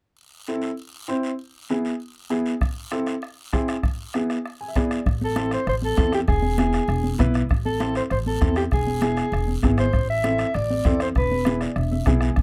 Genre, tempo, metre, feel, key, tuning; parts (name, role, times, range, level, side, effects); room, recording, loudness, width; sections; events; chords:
latin, cumbia; 197 BPM; 4/4; straight; A harmonic minor; A4 = 441 Hz
guiro; percussion; 0.2-12.4 s; -42 LUFS; equal
warm upright piano; accompaniment; 0.5-12.4 s; B3 to G#5; -27 LUFS; equal
bombo; percussion; 2.6-12.4 s; -27 LUFS; equal
upright bass; bass; 5.1-12.4 s; E1 to E2; -27 LUFS; equal
congas; percussion; 5.1-12.4 s; -31 LUFS; equal
breathy soprano saxophone; melody; 5.2-11.6 s; G4 to E5; -27 LUFS; equal; plate reverb
light reverb; -23 LUFS; mono
0.2-5.1 A section; 5.1-12.4 B section
upright piano fill 4.4-5.1, 11.5-12.4
0.2 Am; 1.4 E; 2.6 Am; 3.8 E7; 5.1 Am; 6.3 E; 7.5 Am; 8.7 E; 9.9 Am; 11.2 E